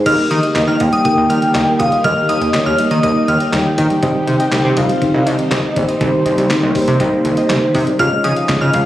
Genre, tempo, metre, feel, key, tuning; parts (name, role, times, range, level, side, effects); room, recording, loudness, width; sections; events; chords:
synth-pop; 121 BPM; 4/4; straight; Eb mixolydian; A4 = 439 Hz
soft octave-layered synth lead; melody; 0.0-8.9 s; C5 to G5; -19 LUFS; left 1 dB; chorus, phaser, ping-pong delay
muted felt-like synth keys; accompaniment; 0.0-8.9 s; Bb3 to Db5; -18 LUFS; equal; chorus
phased string machine; sustained chords; 0.0-8.9 s; Eb3 to Db4; -22 LUFS; equal; ensemble chorus, phaser
glassy synth bell; second line; 0.1-3.4, 8.0-8.7 s; Eb6 to F6; -19 LUFS; left 1 dB; chorus, ping-pong delay
soft round pluck; arpeggios; 0.1-8.8 s; Eb3 to F5; -24 LUFS; right 1 dB; chorus, ping-pong delay
chorused synth bass; bass; 0.1-8.8 s; Bb1 to Eb3; -18 LUFS; equal
detuned 8-bit digital drum machine; drums; 0.1-8.9 s; crash cymbal, handclaps, hi-hat, kick drum, snare drum; -22 LUFS; equal
light reverb; recorded on a phone in the room, studio reverb; -12 LUFS; side -13 dB against mid
0.1-8.9 A section
0.1 Eb; 4.0 Cm; 8.0 Db